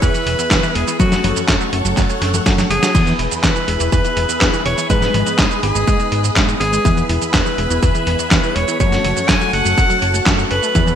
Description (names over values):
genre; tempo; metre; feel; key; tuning
italo disco; 123 BPM; 4/4; straight; unclear; A4 = 440 Hz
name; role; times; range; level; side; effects
edgy alto saxophone; melody; 0.0-11.0 s; F#4 to G#5; -20 LUFS; left 1 dB; digital delay
phased string machine; sustained chords; 0.0-11.0 s; E4 to C#6; -24 LUFS; equal; ensemble chorus, phaser
wide unison pluck; arpeggios; 0.0-11.0 s; E2 to F#4; -25 LUFS; right 2 dB; ping-pong delay
mellow synth brass; stabs; 0.0-11.0 s; G#3 to B4; -25 LUFS; left 2 dB; chorus
fat analog bass; bass; 0.0-10.9 s; E1 to G#2; -20 LUFS; equal; none
dusty soul sampler-style drum kit; drums; 0.0-11.0 s; cabasa, crash cymbal, handclaps, hi-hat, snare drum, toms; -19 LUFS; equal; gated reverb
electronic kick drum; drums; 0.0-10.8 s; none; -18 LUFS; equal; none
room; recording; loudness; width
light reverb, digital ambience; bright 1980s-style digital production; -13 LUFS; side -9 dB against mid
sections
0.0-11.0 A section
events
drum fill 2.2-2.9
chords
0.0 E; 1.0 F#m; 2.9 E; 4.9 G#m; 6.8 E; 8.8 F#m